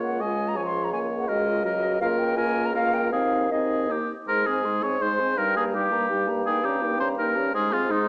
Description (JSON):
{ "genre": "quick classical-period movement for wind quintet", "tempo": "165 BPM", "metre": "3/4", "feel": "straight", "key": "Ab major", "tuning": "A4 = 441 Hz", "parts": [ { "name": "silver concert flute", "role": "melody", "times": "0.0-8.1 s", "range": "Eb5 to C6", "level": "-30 LUFS", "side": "equal", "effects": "none" }, { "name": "warm oboe", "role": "second line", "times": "0.0-8.1 s", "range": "Eb4 to Eb5", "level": "-26 LUFS", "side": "equal", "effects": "none" }, { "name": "dark clarinet", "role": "accompaniment", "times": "0.0-8.1 s", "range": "Eb4 to Ab4", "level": "-32 LUFS", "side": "right 1 dB", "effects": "none" }, { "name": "warm French horn", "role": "accompaniment", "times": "0.0-8.1 s", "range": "F3 to Db4", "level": "-30 LUFS", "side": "equal", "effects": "none" }, { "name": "mellow bassoon", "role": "bass", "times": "0.0-8.1 s", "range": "Db2 to Ab2", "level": "-28 LUFS", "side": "equal", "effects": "none" } ], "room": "moderate recital hall reverb, RT60 1.4 s", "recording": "small speaker sound", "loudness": "-22 LUFS", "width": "side -30 dB against mid", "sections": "0.0-4.3 A section; 4.3-8.1 B section", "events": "none", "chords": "0.0 Db; 0.9 Ebm7/Db; 2.0 Bbm/Db; 3.1 Ab/Eb; 3.9 Eb; 4.3 Ab; 5.4 Eb/G; 6.5 Eb7/G; 7.5 Ab" }